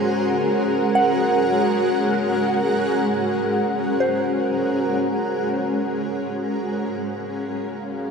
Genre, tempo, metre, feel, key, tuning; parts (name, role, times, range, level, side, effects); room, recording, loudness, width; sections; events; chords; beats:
ambient; free time; A4 = 440 Hz
granular cloud pad; sustained chords; 0.0-8.1 s; Ab3 to Gb5; -20 LUFS; equal; built-in reverb, shimmer reverb
soft synth bell; arpeggios; 0.0-8.1 s; C5 to Gb5; -26 LUFS; right 1 dB; chorus, phaser, tape echo, shimmer reverb
wet huge ambient reverb, RT60 7.8 s; -19 LUFS; side -5 dB against mid
0.0-8.1 A section
fade-out 2.3-8.1
0.0 Gbadd9/Ab
free time